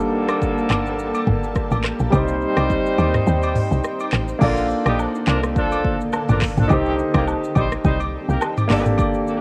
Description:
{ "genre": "afrobeats", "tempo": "105 BPM", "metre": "4/4", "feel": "swing 55% on 16ths", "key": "C dorian", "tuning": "A4 = 440 Hz", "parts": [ { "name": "clear horn section", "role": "second line", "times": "0.0-8.8 s", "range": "D3 to C5", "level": "-28 LUFS", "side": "equal", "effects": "cassette tape, tape echo" }, { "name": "warm concert grand piano", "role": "accompaniment", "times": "0.0-9.4 s", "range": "G3 to D5", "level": "-26 LUFS", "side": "equal", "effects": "cassette tape" }, { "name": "granular cloud pad", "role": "sustained chords", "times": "0.0-9.4 s", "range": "D3 to A5", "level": "-34 LUFS", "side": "equal", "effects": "built-in reverb, sidechain pumping, cassette tape" }, { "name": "woody log drum bass", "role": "bass", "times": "0.0-9.4 s", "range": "G1 to Eb2", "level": "-24 LUFS", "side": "equal", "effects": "none" }, { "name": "afro-pop drum kit", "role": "drums", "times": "0.0-9.4 s", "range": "crash cymbal, handclaps, hi-hat, kick drum, rim click, shaker, toms", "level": "-25 LUFS", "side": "equal", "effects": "cassette tape" }, { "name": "agogo bells and woodblock", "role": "percussion", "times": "0.3-9.1 s", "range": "none", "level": "-32 LUFS", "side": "equal", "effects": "none" } ], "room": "digital ambience", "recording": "home recording on cassette", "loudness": "-20 LUFS", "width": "mono", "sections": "0.0-4.4 A section; 4.4-9.4 B section", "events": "break 3.3-4.4", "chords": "0.0 Gmadd9; 2.1 Cm; 4.4 Bbmaj7; 6.7 Cm; 8.7 Gmadd9" }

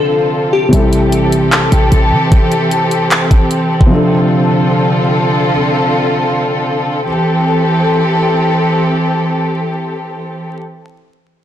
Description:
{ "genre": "hip hop, trap", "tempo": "151 BPM", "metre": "4/4", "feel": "half-time", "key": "A minor", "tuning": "A4 = 440 Hz", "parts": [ { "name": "glassy digital keys", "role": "melody", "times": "0.0-0.7 s", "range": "G4 to A4", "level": "-17 LUFS", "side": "left 4 dB", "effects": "chorus, tape echo" }, { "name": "dark concert grand piano", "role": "accompaniment", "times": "0.0-7.1 s", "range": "C3 to A4", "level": "-16 LUFS", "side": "left 1 dB", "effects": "none" }, { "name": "muted studio string section", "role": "sustained chords", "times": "0.0-10.5 s", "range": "D3 to A4", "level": "-13 LUFS", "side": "equal", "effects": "none" }, { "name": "short 808-style bass", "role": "bass", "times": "0.7-2.3 s", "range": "A1 to E3", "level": "-14 LUFS", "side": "equal", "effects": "none" }, { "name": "trap drum kit", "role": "drums", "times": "0.7-3.9 s", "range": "handclaps, hi-hat, kick drum", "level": "-11 LUFS", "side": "equal", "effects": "none" } ], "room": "moderate recital hall reverb, RT60 1.3 s, digital ambience", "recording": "blown-out, overdriven recording, vinyl crackle, overdrive", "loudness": "-10 LUFS", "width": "side -11 dB against mid", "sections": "0.7-7.1 A section; 7.1-10.3 B section", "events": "break 0.0-0.7", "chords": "0.0 Dm7; 0.7 Am7; 3.9 Dm7; 7.1 Am7" }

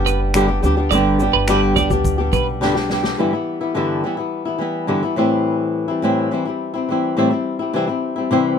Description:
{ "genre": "acoustic pop", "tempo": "106 BPM", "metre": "4/4", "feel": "straight", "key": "G major", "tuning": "A4 = 439 Hz", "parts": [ { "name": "flamenco guitar", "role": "accompaniment", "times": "0.0-8.6 s", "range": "G2 to G4", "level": "-17 LUFS", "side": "left 2 dB", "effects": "none" }, { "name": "upright bass", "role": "bass", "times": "0.0-3.1 s", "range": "F#1 to D2", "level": "-21 LUFS", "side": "right 1 dB", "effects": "none" }, { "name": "twelve-string electric guitar", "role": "arpeggios", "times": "0.1-2.5 s", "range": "B4 to D5", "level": "-20 LUFS", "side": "right 6 dB", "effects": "harmonic tremolo" }, { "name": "unplugged drum kit", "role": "drums", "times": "0.1-3.2 s", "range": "finger snaps, kick drum, shaker, snare drum", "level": "-24 LUFS", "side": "equal", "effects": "none" } ], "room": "little or no reverb", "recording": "none", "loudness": "-16 LUFS", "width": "side -7 dB against mid", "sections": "0.0-3.2 A section; 3.2-8.6 B section", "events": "drum fill 2.6-3.2", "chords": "0.0 G; 3.2 G6; 5.2 Am7; 7.7 C" }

